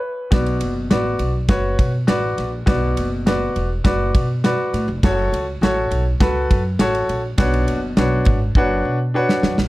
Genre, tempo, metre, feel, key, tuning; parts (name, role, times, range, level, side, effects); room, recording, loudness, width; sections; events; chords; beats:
uptempo 1960s-style soul; 102 BPM; 4/4; straight; B minor; A4 = 441 Hz
warm concert grand piano; accompaniment; 0.0-9.6 s; B2 to F#5; -21 LUFS; left 1 dB
upright bass; bass; 0.3-9.7 s; E1 to B2; -22 LUFS; equal
natural country drum kit; drums; 0.3-9.7 s; kick drum, ride cymbal, snare drum; -19 LUFS; equal
small room ambience; -16 LUFS; side -18 dB against mid
0.3-9.7 A section
stop 0.0-0.3; drum fill 8.5-9.7
0.3 Bm; 5.0 F#m; 7.4 Bmadd9
| 0.32 0.91 1.50 2.08 | 2.67 3.26 3.85 4.43 | 5.02 5.61 6.20 6.79 | 7.37 7.96 8.55 9.13